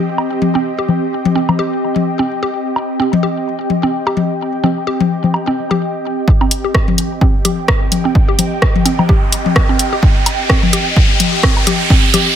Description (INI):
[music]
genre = minimal techno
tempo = 128 BPM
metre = 4/4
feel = swing 57% on 16ths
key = C minor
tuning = A4 = 440 Hz
[part]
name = ethereal airy pad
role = texture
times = 0.0-12.4 s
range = C4 to G5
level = -20 LUFS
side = right 1 dB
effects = ensemble chorus, built-in reverb, sidechain pumping
[part]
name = electronic woodblock, toms and congas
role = percussion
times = 0.2-12.2 s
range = none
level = -17 LUFS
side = left 5 dB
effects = none
[part]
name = mallet-like synth pluck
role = riff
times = 0.6-12.2 s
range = C4 to G4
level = -20 LUFS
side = right 2 dB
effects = chorus, sidechain pumping, ping-pong delay
[part]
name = electronic kick drum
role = drums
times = 6.3-12.0 s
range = none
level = -13 LUFS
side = right 1 dB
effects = none
[part]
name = riser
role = sound effects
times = 8.5-12.4 s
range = none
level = -18 LUFS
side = right 1 dB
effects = none
[part]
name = house drum kit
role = drums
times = 6.5-12.2 s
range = hi-hat, rim click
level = -16 LUFS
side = equal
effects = none
[sound]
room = digital ambience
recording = none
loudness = -12 LUFS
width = side -9 dB against mid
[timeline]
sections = 0.0-6.3 A section; 6.3-12.4 B section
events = build-up 6.3-12.4; filter sweep on synth arpeggio sound 6.3-12.4; riser 8.5-12.4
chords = 0.0 Cm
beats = 0.18 | 0.65 1.12 1.59 2.06 | 2.53 3.00 3.46 3.93 | 4.40 4.87 5.34 5.81 | 6.28 6.75 7.21 7.68 | 8.15 8.62 9.09 9.56 | 10.03 10.50 10.96 11.43 | 11.90